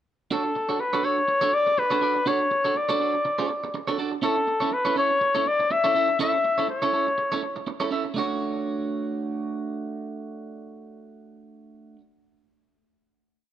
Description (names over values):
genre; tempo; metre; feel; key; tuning
disco; 123 BPM; 4/4; swing 56% on 16ths; unclear; A4 = 441 Hz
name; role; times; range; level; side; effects
clear flugelhorn; melody; 0.3-7.6 s; A4 to E5; -22 LUFS; left 2 dB; none
clean electric guitar; accompaniment; 0.3-12.0 s; A3 to E5; -28 LUFS; right 5 dB; none
room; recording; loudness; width
moderate plate reverb, RT60 3.0 s; none; -22 LUFS; side -11 dB against mid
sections
0.3-8.1 groove; 8.1-12.1 final chord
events
none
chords
0.3 Bm9 (rootless); 4.2 A; 8.1 Dmaj7/A